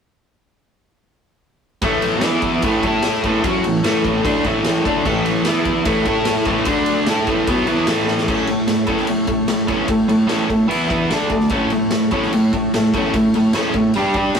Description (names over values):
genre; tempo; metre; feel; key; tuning
garage rock duo or trio; 148 BPM; 4/4; straight; A mixolydian; A4 = 440 Hz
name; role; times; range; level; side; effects
combo organ; sustained chords; 1.8-14.4 s; C#4 to A5; -26 LUFS; left 1 dB; none
biting overdriven guitar; riff; 1.8-14.4 s; A2 to A4; -16 LUFS; equal; none
raw garage drum kit; drums; 1.8-14.4 s; crash cymbal, kick drum, ride cymbal, snare drum; -24 LUFS; equal; none
room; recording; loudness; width
wet small room reverb, RT60 0.5 s; rough rehearsal-room recording; -15 LUFS; side -6 dB against mid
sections
1.8-8.3 A section; 8.3-14.4 B section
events
transistor combo organ fill 4.2-5.1, 10.7-11.5; drum fill 8.1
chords
1.8 A; 2.2 E5; 2.6 A; 5.5 E5; 5.9 A; 6.7 D5; 7.1 A; 10.7 E5; 11.1 D5; 11.5 A; 13.9 G5